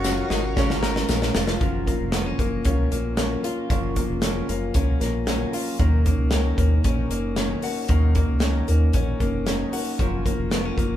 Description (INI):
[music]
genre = jangly indie pop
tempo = 115 BPM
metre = 4/4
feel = straight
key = F# major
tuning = A4 = 440 Hz
[part]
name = breathy trumpet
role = melody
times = 0.0-1.1 s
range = F#4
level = -30 LUFS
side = equal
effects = none
[part]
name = fingerpicked twelve-string acoustic guitar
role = accompaniment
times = 0.0-11.0 s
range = F#2 to A#4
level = -30 LUFS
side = right 2 dB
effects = none
[part]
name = string machine, violins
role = sustained chords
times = 0.0-1.6 s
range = A#4 to C#6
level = -39 LUFS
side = right 1 dB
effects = none
[part]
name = direct-recorded clean electric guitar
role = arpeggios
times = 0.0-11.0 s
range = E#3 to A#4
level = -28 LUFS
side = left 3 dB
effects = none
[part]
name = round analog bass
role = bass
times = 0.0-11.0 s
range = E#1 to D#2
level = -23 LUFS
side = equal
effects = none
[part]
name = modern studio drum kit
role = drums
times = 0.0-10.9 s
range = hi-hat, kick drum, snare drum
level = -25 LUFS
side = equal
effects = none
[part]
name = tambourine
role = percussion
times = 0.0-1.5 s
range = none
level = -37 LUFS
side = left 6 dB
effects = none
[sound]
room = moderate large studio reverb, RT60 0.9 s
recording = band playing live in one room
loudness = -20 LUFS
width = side -12 dB against mid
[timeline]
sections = 0.0-1.6 A section; 1.6-11.0 B section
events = drum fill 0.0-1.6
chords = 0.0 F#maj7; 5.8 D#m7; 10.0 F#maj7